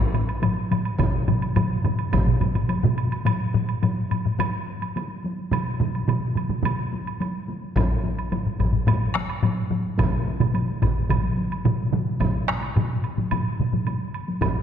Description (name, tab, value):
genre	japanese traditional, taiko drum ensemble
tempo	107 BPM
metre	4/4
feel	straight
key	none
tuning	none
part	taiko ensemble	percussion	0.0-14.5 s	none	-25 LUFS	left 3 dB	none
part	taiko ensemble	percussion	0.1-14.5 s	none	-29 LUFS	left 1 dB	none
part	woodblock	percussion	0.1-14.5 s	none	-33 LUFS	right 6 dB	none
part	taiko ensemble	percussion	1.0-14.5 s	none	-24 LUFS	right 3 dB	none
part	taiko ensemble	percussion	1.0-2.3, 7.8-14.5 s	none	-27 LUFS	equal	none
room	wet concert hall reverb, RT60 2.1 s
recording	dark, warm production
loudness	-21 LUFS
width	side -8 dB against mid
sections	0.0-3.3 A section; 3.3-12.2 B section; 12.2-14.6 C section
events	speeding up 0.0-14.6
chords	none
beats	0.43 | 1.00 1.56 2.13 2.70 | 3.26 3.83 4.39 4.95 | 5.52 6.08 6.64 7.20 | 7.76 8.32 8.88 9.44 | 9.99 10.55 11.10 11.66 | 12.21 12.76 13.32 13.87 | 14.42